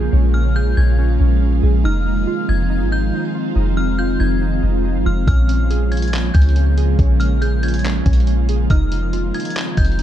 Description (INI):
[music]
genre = hip hop, atmospheric cloud-rap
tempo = 140 BPM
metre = 4/4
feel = half-time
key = Bb dorian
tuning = A4 = 440 Hz
[part]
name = ethereal airy pad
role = sustained chords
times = 0.0-10.0 s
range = Db3 to F4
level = -21 LUFS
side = right 1 dB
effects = ensemble chorus, built-in reverb, sidechain pumping
[part]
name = glassy digital keys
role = arpeggios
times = 0.0-10.0 s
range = Db4 to Ab4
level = -28 LUFS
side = right 6 dB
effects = chorus, low-pass filter, tape echo
[part]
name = soft 808-style bass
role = bass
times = 0.0-10.0 s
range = F1 to Db2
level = -16 LUFS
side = equal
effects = none
[part]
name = metallic FM bell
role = melody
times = 0.3-10.0 s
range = F6 to Ab6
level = -29 LUFS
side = left 2 dB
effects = chorus, low-pass filter, tape echo
[part]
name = lo-fi sampler-style drum kit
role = drums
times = 5.3-10.0 s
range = handclaps, hi-hat, kick drum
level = -19 LUFS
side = equal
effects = none
[sound]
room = little or no reverb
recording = dark, warm production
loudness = -14 LUFS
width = side -11 dB against mid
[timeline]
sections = 0.0-10.0 A section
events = none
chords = 0.0 Bbm7; 1.8 Fm7; 5.3 Bbm7; 8.7 Fm7